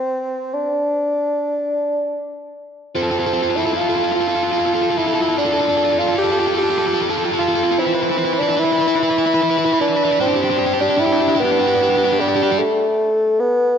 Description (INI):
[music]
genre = rock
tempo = 50 BPM (dotted quarters)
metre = 6/8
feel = straight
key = unclear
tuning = A4 = 436 Hz
[part]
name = mellow bassoon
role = melody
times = 0.0-13.8 s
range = G3 to G4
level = -18 LUFS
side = equal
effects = analog delay
[part]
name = crunchy overdriven guitar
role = riff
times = 3.0-12.6 s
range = D4 to B4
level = -19 LUFS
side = equal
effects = slapback echo
[sound]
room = wet lush hall reverb, RT60 2.1 s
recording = big arena sound, nothing above 7.7 kHz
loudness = -16 LUFS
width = side -7 dB against mid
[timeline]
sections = 0.0-3.0 A section; 3.0-12.6 B section; 12.6-13.8 C section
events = build-up 3.0-12.6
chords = 0.0 N.C.; 3.0 F; 7.8 Cmaj9; 10.2 G5; 12.6 N.C.